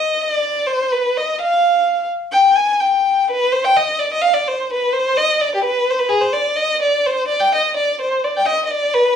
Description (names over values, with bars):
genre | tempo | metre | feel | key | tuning
klezmer | 127 BPM | 2/4 | straight | unclear | A4 = 440 Hz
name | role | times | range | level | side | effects
clear violin | solo | 0.0-9.2 s | G4 to Ab5 | -15 LUFS | left 1 dB | none
room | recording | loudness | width
moderate studio reverb, RT60 0.5 s | cassette tape, small room ambience | -15 LUFS | side -8 dB against mid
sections
0.0-3.3 A section; 3.3-9.2 B section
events
violin solo 0.0-3.3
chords
none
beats
| 0.42 0.89 | 1.37 1.84 | 2.32 2.79 | 3.26 3.74 | 4.21 4.68 | 5.16 5.63 | 6.10 6.57 | 7.04 7.51 | 7.99 8.46 | 8.93